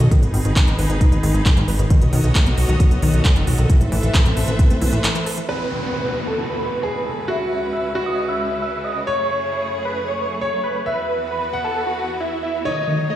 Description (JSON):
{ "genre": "uplifting trance", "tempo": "134 BPM", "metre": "4/4", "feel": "straight", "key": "E major", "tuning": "A4 = 440 Hz", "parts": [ { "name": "bright studio string section", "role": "sustained chords", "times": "0.0-13.2 s", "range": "C#2 to E5", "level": "-28 LUFS", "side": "equal", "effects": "sidechain pumping" }, { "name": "wide unison pluck", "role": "arpeggios", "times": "0.0-5.4, 12.7-13.2 s", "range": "D#3 to B4", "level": "-24 LUFS", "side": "left 2 dB", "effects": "sidechain pumping, digital delay" }, { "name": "fat analog bass", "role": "bass", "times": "0.0-5.0 s", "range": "F#1 to A2", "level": "-18 LUFS", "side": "equal", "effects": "sidechain pumping" }, { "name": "big-room dance drum kit", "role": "drums", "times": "0.0-5.5 s", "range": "handclaps, hi-hat", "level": "-25 LUFS", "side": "right 1 dB", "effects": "overdrive, sidechain pumping on hats" }, { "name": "electronic kick drum", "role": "drums", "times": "0.1-4.7 s", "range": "none", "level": "-15 LUFS", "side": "equal", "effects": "none" }, { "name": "big supersaw lead", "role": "melody", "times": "5.5-13.2 s", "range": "E4 to E5", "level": "-24 LUFS", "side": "right 1 dB", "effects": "phaser, sidechain pumping, low-pass filter, digital delay" }, { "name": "bright grand piano", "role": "second line", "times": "5.5-13.2 s", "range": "F#4 to F#5", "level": "-25 LUFS", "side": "equal", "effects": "digital delay" }, { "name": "downlifter", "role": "sound effects", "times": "5.5-9.1 s", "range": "none", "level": "-29 LUFS", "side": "equal", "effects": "none" } ], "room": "light reverb", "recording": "played on a big sound system in a bare room, stone room reverb", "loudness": "-17 LUFS", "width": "side -12 dB against mid", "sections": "0.0-5.5 A section; 5.5-13.2 B section", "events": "break 5.0-5.5; filter sweep on supersaw synth 5.5-13.2", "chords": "0.1 G#m; 1.9 B7; 3.7 Amadd9; 5.5 Esus2; 7.3 C#m7; 9.1 F#m7; 10.9 Esus2; 12.7 B7" }